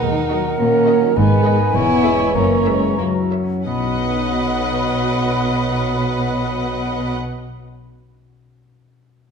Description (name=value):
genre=cinematic, playful, whimsical film cue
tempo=88-106 BPM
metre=2/4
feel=straight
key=B major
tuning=A4 = 440 Hz
part: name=mellow cor anglais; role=second line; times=0.0-7.1 s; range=A#4 to D#5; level=-26 LUFS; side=right 4 dB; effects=none
part: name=mellow hollow silver concert flute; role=second line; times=0.0-7.1 s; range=F#5 to B5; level=-26 LUFS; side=left 3 dB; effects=none
part: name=rich chamber violin section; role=second line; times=0.0-7.1 s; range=A#3 to D#5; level=-27 LUFS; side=left 3 dB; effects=none
part: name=dark bassoon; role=accompaniment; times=0.0-7.1 s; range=D#3 to F#3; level=-26 LUFS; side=right 5 dB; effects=none
part: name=dark French horn section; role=sustained chords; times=0.0-7.1 s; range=F#3 to B3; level=-20 LUFS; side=equal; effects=none
part: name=concert harp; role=arpeggios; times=0.0-8.0 s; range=E2 to F#5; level=-25 LUFS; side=left 6 dB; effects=none
part: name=rich chamber double bass section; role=bass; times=0.0-7.1 s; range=E1 to D#2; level=-25 LUFS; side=right 4 dB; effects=none
part: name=warm chamber cello section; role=bass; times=0.0-7.1 s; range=C#2 to B2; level=-26 LUFS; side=right 3 dB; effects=none
part: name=warm symphonic violin section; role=melody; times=0.3-7.1 s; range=D#5 to F#5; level=-30 LUFS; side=left 4 dB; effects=none
part: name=rich chamber viola section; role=accompaniment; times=0.3-7.1 s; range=F#4 to C#5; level=-31 LUFS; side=right 2 dB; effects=none
room=wet scoring stage reverb, RT60 1.5 s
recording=minimal, uncompressed stereo recording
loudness=-15 LUFS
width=side -6 dB against mid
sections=0.0-3.7 A section; 3.7-6.4 B section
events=slowing down 0.6-3.7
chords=0.0 D#m; 1.2 G#m; 1.7 C#m7/E; 2.3 F#7; 3.7 B